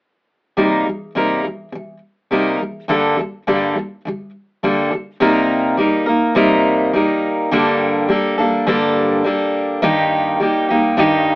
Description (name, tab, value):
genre	pop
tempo	104 BPM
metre	4/4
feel	swing 55% on 16ths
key	unclear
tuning	A4 = 440 Hz
part	fingerpicked steel-string acoustic guitar	solo	0.6-11.4 s	G2 to Bb4	-14 LUFS	equal	none
room	light reverb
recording	AM radio sound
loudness	-14 LUFS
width	side -22 dB against mid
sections	0.6-5.2 A section; 5.2-11.4 B section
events	none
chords	0.6 Cm7; 2.9 Gmadd9; 5.2 Cm7; 7.5 Gmadd9; 9.8 Eb/G